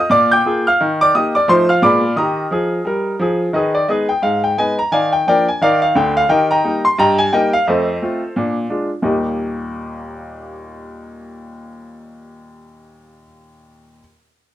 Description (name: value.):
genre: jazz, stride piano.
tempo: 175 BPM.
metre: 4/4.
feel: swing 59% on 8ths.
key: Eb major.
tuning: A4 = 441 Hz.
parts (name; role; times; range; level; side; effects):
bright upright piano; solo; 0.0-14.0 s; D2 to G6; -14 LUFS; equal; none.
room: moderate small room reverb, RT60 0.5 s.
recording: none.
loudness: -14 LUFS.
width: side -12 dB against mid.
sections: 0.0-3.5 A section; 3.5-9.0 B section; 9.0-11.8 C section.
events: none.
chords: 0.1 Bb7; 0.8 Eb; 1.5 F7; 1.8 Bb7b9; 2.2 Eb; 3.5 Abm/Eb; 4.9 Bb/Eb; 6.3 Eb; 7.0 Eb/G; 7.7 F7; 8.3 Bb7; 9.0 Eb.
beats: 0.11 0.45 | 0.79 1.14 1.48 1.82 | 2.17 2.51 2.85 3.20 | 3.54 3.88 4.23 4.57 | 4.91 5.26 5.60 5.95 | 6.29 6.63 6.98 7.32 | 7.66 8.01 8.35 8.69 | 9.04 9.38 9.72 10.07 | 10.41 10.75 11.10 11.44.